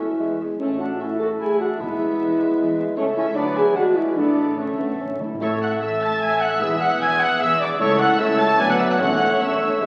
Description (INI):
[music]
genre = quick classical-period movement for symphony orchestra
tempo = 150 BPM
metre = 3/4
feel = straight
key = A major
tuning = A4 = 439 Hz
[part]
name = muted studio violin section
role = melody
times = 0.0-9.9 s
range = D5 to A6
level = -30 LUFS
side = equal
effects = none
[part]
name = concert flute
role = second line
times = 0.0-9.9 s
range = C#5 to A5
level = -31 LUFS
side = equal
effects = none
[part]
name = mellow cor anglais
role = second line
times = 0.0-9.9 s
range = A3 to E5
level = -32 LUFS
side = equal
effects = none
[part]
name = muted studio violin section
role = second line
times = 0.0-9.9 s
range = C#5 to A5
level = -31 LUFS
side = equal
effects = none
[part]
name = warm clarinet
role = second line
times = 0.0-9.9 s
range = G#4 to C#5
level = -35 LUFS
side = equal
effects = none
[part]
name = mellow bassoon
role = accompaniment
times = 0.0-9.9 s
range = F#3 to E4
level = -29 LUFS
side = equal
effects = none
[part]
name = muted studio viola section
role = accompaniment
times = 0.0-9.9 s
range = A3 to E5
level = -34 LUFS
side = equal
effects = none
[part]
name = dark French horn section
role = sustained chords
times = 0.0-9.9 s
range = F#3 to A4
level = -25 LUFS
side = equal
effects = none
[part]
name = muted studio cello section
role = bass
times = 0.0-9.9 s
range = C#2 to A2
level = -35 LUFS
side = equal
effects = none
[part]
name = muted studio double bass section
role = bass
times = 0.0-9.9 s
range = E1 to D2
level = -39 LUFS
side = equal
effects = none
[part]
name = timpani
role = percussion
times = 1.8-5.4, 9.0-9.6 s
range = E2 to A2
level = -38 LUFS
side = equal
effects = none
[part]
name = clear trumpet section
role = stabs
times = 5.4-9.9 s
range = C#5 to A5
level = -31 LUFS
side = equal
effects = none
[sound]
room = wet scoring stage reverb, RT60 1.6 s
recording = very old 78 rpm record, vinyl crackle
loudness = -20 LUFS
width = mono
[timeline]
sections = 0.0-5.4 A section; 5.4-9.9 A section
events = timpani fill 4.2-5.4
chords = 0.2 E; 0.6 A5; 1.8 E; 3.0 A/C#; 3.4 Bm/D; 3.8 E7; 4.2 A; 5.4 A5; 6.6 E; 7.8 A/C#; 8.6 Bm/D; 9.0 A/E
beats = 0.18 | 0.59 1.00 1.40 | 1.79 2.19 2.58 | 2.97 3.36 3.76 | 4.17 4.59 5.01 | 5.42 5.82 6.22 | 6.61 7.01 7.41 | 7.80 8.19 8.59 | 9.00 9.41 9.82